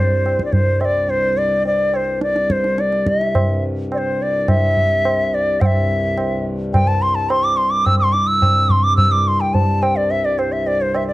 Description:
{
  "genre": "indian classical, Hindustani",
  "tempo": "106 BPM",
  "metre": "4/4",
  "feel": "straight",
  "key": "C raga bhupali",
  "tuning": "A4 = 441 Hz",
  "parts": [
    { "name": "bright reedy bansuri", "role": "melody", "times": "0.0-11.1 s", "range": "C5 to E6", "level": "-17 LUFS", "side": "equal", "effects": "plate reverb" },
    { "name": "pedal harmonium", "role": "drone", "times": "0.0-11.1 s", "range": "C2 to G2", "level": "-24 LUFS", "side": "left 2 dB", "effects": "plate reverb" },
    { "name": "tabla", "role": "percussion", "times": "0.3-11.1 s", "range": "none", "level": "-19 LUFS", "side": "right 1 dB", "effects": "none" }
  ],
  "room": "moderate small room reverb, RT60 0.5 s",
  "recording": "cassette tape",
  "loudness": "-15 LUFS",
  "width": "side -17 dB against mid",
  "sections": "0.0-11.1 A section",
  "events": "none",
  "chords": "none",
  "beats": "0.54 | 1.10 1.67 2.23 2.79 | 3.36 3.92 4.49 5.05 | 5.61 6.18 6.74 7.30 | 7.86 8.43 8.99 9.55 | 10.11 10.67"
}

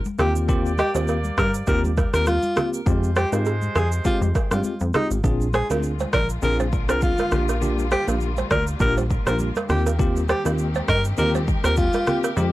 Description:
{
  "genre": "afrobeats",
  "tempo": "101 BPM",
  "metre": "4/4",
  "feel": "swing 55% on 16ths",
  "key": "unclear",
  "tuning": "A4 = 440 Hz",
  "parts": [
    { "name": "afro-pop drum kit", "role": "drums", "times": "0.0-12.5 s", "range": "kick drum, rim click, shaker", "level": "-24 LUFS", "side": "equal", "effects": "none" },
    { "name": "congas", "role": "percussion", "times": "0.1-12.5 s", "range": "none", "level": "-33 LUFS", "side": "left 1 dB", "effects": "none" },
    { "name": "clear alto saxophone", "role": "melody", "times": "0.2-12.2 s", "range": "Eb4 to Bb4", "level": "-25 LUFS", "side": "equal", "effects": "tape echo" },
    { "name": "warm horn section", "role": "second line", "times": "0.2-4.9 s", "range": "Ab3 to D5", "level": "-34 LUFS", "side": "right 2 dB", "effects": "none" },
    { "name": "bell-like tine electric piano", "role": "accompaniment", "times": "0.2-12.5 s", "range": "Ab3 to Ab4", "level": "-26 LUFS", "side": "left 1 dB", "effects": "medium stereo tremolo" },
    { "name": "balafon", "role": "riff", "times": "0.2-12.3 s", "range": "G4 to Eb5", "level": "-28 LUFS", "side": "right 5 dB", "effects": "tape echo" },
    { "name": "plucky analog bass", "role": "bass", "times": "0.2-12.5 s", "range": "Ab1 to Ab2", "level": "-23 LUFS", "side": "equal", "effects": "none" },
    { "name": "warm studio string section", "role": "sustained chords", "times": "5.2-12.5 s", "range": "D3 to G4", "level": "-33 LUFS", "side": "left 3 dB", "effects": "none" }
  ],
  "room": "little or no reverb",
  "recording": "dry, gritty hardware recording",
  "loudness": "-19 LUFS",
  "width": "side -16 dB against mid",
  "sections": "0.0-5.2 A section; 5.2-12.5 B section",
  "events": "none",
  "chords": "0.2 Eb6; 2.9 Fmadd9; 5.2 Bb7; 7.3 Gm7/Bb; 9.7 Eb6",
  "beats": "| 0.49 1.08 1.68 2.27 | 2.86 3.46 4.05 4.65 | 5.24 5.83 6.43 7.02 | 7.62 8.21 8.80 9.40 | 9.99 10.59 11.18 11.78 | 12.37"
}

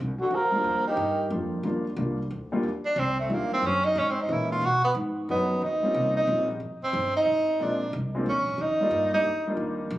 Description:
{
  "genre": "jazz, small-group swing and bop",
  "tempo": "181 BPM",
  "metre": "3/4",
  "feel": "swing 64% on 8ths",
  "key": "Eb major",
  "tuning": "A4 = 442 Hz",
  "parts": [
    { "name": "upright bass", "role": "bass", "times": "0.0-10.0 s", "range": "G1 to B2", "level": "-32 LUFS", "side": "equal", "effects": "none" },
    { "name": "breathy trumpet", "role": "melody", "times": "0.2-1.3 s", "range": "Gb4 to Bb4", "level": "-26 LUFS", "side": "right 1 dB", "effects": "none" },
    { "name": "breathy tenor saxophone", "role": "second line", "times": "0.2-9.4 s", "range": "D3 to F#4", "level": "-25 LUFS", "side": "right 1 dB", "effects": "none" },
    { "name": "warm grand piano", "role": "accompaniment", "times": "0.5-9.9 s", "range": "Eb2 to D5", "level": "-30 LUFS", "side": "left 1 dB", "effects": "none" }
  ],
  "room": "moderate spring reverb, RT60 2.5 s",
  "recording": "recorded on a phone in the room, club reverb",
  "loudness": "-24 LUFS",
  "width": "side -15 dB against mid",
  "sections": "0.0-2.6 A section; 2.6-10.0 B section",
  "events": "tenor saxophone solo 2.6-10.0",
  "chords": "0.0 Bbadd9; 0.7 Ebmaj7; 3.6 Gb13; 4.6 Bmaj7; 5.6 Eb13; 6.6 Abmaj7; 7.6 Bb9; 8.6 Ebmaj7",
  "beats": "0.32 | 0.66 0.99 1.32 | 1.65 1.98 2.31 | 2.64 2.97 3.30 | 3.63 3.97 4.30 | 4.63 4.96 5.29 | 5.62 5.95 6.28 | 6.61 6.94 7.27 | 7.61 7.93 8.27 | 8.60 8.93 9.26 | 9.59 9.91"
}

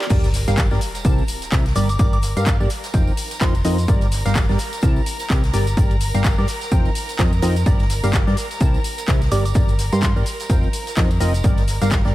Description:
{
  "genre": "piano house",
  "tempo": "127 BPM",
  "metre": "4/4",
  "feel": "swing 58% on 16ths",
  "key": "G minor",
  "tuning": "A4 = 440 Hz",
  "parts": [
    { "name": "percussive organ stab", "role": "riff", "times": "0.0-12.1 s", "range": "C3 to A5", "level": "-25 LUFS", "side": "equal", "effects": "analog chorus, sidechain pumping, tape echo" },
    { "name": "house drum kit", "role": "drums", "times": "0.0-12.0 s", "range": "crash cymbal, handclaps, hi-hat, shaker, snare drum", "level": "-28 LUFS", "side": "left 1 dB", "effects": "overdrive" },
    { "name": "clear studio violin section", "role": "sustained chords", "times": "0.1-12.1 s", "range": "Bb4 to Bb5", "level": "-32 LUFS", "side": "right 1 dB", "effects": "sidechain pumping" },
    { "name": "solid FM bass", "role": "bass", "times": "0.1-12.1 s", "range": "F1 to G2", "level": "-20 LUFS", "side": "equal", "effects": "sidechain pumping" },
    { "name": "electronic kick drum", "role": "drums", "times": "0.1-12.0 s", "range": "none", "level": "-18 LUFS", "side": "equal", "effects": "high-pass filter on kick, high-pass filter on room" },
    { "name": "jazz brush drum kit", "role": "drums", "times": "0.1-12.1 s", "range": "hi-hat, shaker, snare drum", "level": "-38 LUFS", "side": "left 1 dB", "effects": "none" },
    { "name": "tambourine", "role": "percussion", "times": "0.1-12.1 s", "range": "none", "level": "-39 LUFS", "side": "right 5 dB", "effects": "none" },
    { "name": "sub drop", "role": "sound effects", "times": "0.1-2.0 s", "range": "none", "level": "-29 LUFS", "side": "equal", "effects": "none" },
    { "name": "soft synth bell", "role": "melody", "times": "1.8-3.9, 9.3-10.1 s", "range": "C6 to D6", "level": "-32 LUFS", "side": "equal", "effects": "chorus, tape echo" }
  ],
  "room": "studio reverb",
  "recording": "high-pass filter",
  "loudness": "-16 LUFS",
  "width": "side -16 dB against mid",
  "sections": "0.1-12.1 A section",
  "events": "drop 0.1-12.1; impact 0.1-2.0",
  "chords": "0.1 Gm; 1.0 C7; 1.8 Gm; 2.7 F7sus4; 3.9 Gm; 4.8 C7; 5.5 Gm; 6.5 F7sus4; 7.7 Gm; 8.6 C7; 9.3 Gm; 10.3 F7sus4; 11.4 Gm",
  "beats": "| 0.10 0.57 1.05 1.52 | 1.99 2.46 2.94 3.41 | 3.88 4.36 4.83 5.30 | 5.77 6.25 6.72 7.19 | 7.66 8.13 8.61 9.08 | 9.55 10.02 10.50 10.97 | 11.44 11.91"
}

